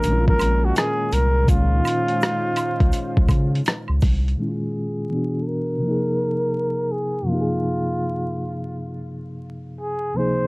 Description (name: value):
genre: lo-fi hip hop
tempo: 83 BPM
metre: 4/4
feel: swing 65% on 16ths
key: unclear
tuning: A4 = 443 Hz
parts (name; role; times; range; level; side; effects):
- breathy flugelhorn; melody; 0.0-10.5 s; F4 to C5; -25 LUFS; equal; low-pass filter, analog delay
- mellow reed electric piano; accompaniment; 0.0-10.5 s; Db2 to Ab4; -25 LUFS; equal; fast tremolo, cassette tape, low-pass filter
- lush unison pad; sustained chords; 0.0-4.3 s; Ab3 to C5; -32 LUFS; equal; chorus
- saturated sub bass; bass; 0.0-4.4 s; Bb1 to Db3; -20 LUFS; equal; none
- dusty soul sampler-style drum kit; drums; 0.0-4.4 s; hi-hat, kick drum, rim click; -19 LUFS; equal; overdrive, vintage 12-bit sampler grit
- tube shaker and woodblock; percussion; 0.0-4.2 s; none; -32 LUFS; right 3 dB; none
room: light reverb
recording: dry, gritty hardware recording, transformer saturation, vinyl crackle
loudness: -19 LUFS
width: side -26 dB against mid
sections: 0.0-4.4 A section; 4.4-10.5 B section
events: filter sweep 4.4-10.5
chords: 0.0 Bbm9; 1.5 Dbmaj7; 4.4 Dbadd9; 5.1 Cbm; 5.8 Bbsus2; 7.3 Gbmaj9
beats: 0.04 0.76 | 1.48 2.21 2.93 3.65 | 4.37 5.10 5.82 6.54 | 7.26 7.99 8.71 9.43 | 10.16